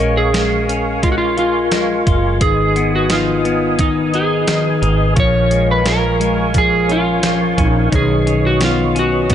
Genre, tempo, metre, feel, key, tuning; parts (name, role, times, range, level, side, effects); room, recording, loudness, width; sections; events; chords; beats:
dream pop; 87 BPM; 4/4; straight; A4 = 440 Hz
electric slide guitar; melody; 0.0-9.3 s; D#4 to C#5; -18 LUFS; right 1 dB; ping-pong delay
percussive tonewheel organ; sustained chords; 0.0-9.3 s; A#4 to D#6; -22 LUFS; right 1 dB; chorus vibrato, slow rotary speaker
semi-hollow electric guitar; arpeggios; 0.0-9.3 s; D#3 to E#4; -19 LUFS; left 4 dB; lush chorus, ping-pong delay
woody fretless electric bass; bass; 0.0-9.3 s; F#1 to B1; -20 LUFS; right 1 dB
crisp 8-bit digital drum machine; drums; 0.3-9.3 s; hi-hat, kick drum, snare drum; -19 LUFS; right 1 dB
light reverb; nothing above 10.6 kHz; -13 LUFS; side -10 dB against mid
0.0-9.3 A section
0.0 A#m7; 2.4 G#m; 5.2 A#m7; 7.9 Badd9
0.34 1.03 1.72 | 2.41 3.10 3.79 4.48 | 5.17 5.86 6.55 7.24 | 7.92 8.62 9.30